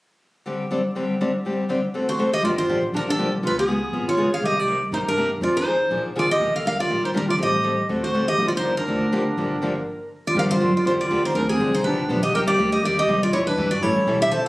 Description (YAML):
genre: acoustic string swing (jazz manouche)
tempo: 242 BPM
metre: 4/4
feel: swing 55% on 8ths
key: G minor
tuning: A4 = 440 Hz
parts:
  - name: picked steel-string acoustic guitar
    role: accompaniment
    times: 0.5-14.5 s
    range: C3 to B4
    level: -25 LUFS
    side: left 1 dB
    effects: none
  - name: picked steel-string acoustic guitar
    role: melody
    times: 2.1-14.5 s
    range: G#4 to A5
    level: -23 LUFS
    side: equal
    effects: none
  - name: breathy clarinet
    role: second line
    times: 2.1-14.5 s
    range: B3 to C5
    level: -24 LUFS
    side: right 1 dB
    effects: none
  - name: upright bass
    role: bass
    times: 2.4-14.5 s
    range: G1 to D3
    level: -28 LUFS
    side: equal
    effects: none
room: moderate club reverb, RT60 0.5 s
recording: recorded on a phone in the room, club reverb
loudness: -19 LUFS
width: side -19 dB against mid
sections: 0.5-2.4 A section; 2.4-10.4 B section; 10.4-14.5 C section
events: stop 9.9-10.4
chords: 0.5 D7sus4; 1.9 D7; 2.4 Gm7; 3.4 C#7; 4.4 Cm9; 5.4 Fm7; 5.9 Bb7; 6.4 Ebmaj9; 7.4 Am7b5; 7.9 D7; 8.4 Gm7; 11.4 Dm7b5; 11.8 G7; 12.3 Cm7; 13.3 Em7; 13.8 A7